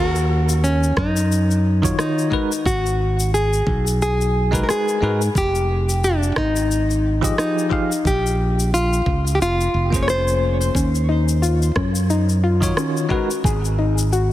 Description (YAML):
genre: sunset chillout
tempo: 89 BPM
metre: 4/4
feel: swing 56% on 16ths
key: unclear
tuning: A4 = 440 Hz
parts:
  - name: nylon-string guitar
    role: melody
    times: 0.0-10.7 s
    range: Db4 to Db5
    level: -21 LUFS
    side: left 1 dB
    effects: tape echo
  - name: modern bright fingered electric bass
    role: bass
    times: 0.0-14.3 s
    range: F1 to Ab2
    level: -19 LUFS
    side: equal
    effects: none
  - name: electronic shaker and rim click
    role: drums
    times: 0.2-14.3 s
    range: none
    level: -27 LUFS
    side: left 1 dB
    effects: none
  - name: electronic kick drum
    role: drums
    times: 1.0-13.6 s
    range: none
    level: -23 LUFS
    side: equal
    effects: none
  - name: bell-like tine electric piano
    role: accompaniment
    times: 1.8-13.3 s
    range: Eb3 to F5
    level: -25 LUFS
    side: equal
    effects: medium stereo tremolo, auto-pan, tape echo
  - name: soft round pluck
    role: arpeggios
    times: 10.8-14.2 s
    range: Db4 to Ab4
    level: -23 LUFS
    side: left 4 dB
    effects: chorus, tape echo
room: light reverb, digital ambience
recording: heavily compressed radio sound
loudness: -17 LUFS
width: side -14 dB against mid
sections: 0.0-14.3 A section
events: none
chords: 0.0 Ebm9; 2.3 Abm9; 5.4 Fm9; 8.1 Bbm9; 10.7 Ebm9; 13.1 Abm9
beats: 0.64 1.31 1.98 | 2.66 3.33 4.01 4.68 | 5.35 6.03 6.70 7.38 | 8.05 8.72 9.40 10.07 | 10.75 11.42 12.10 12.77 | 13.44 14.12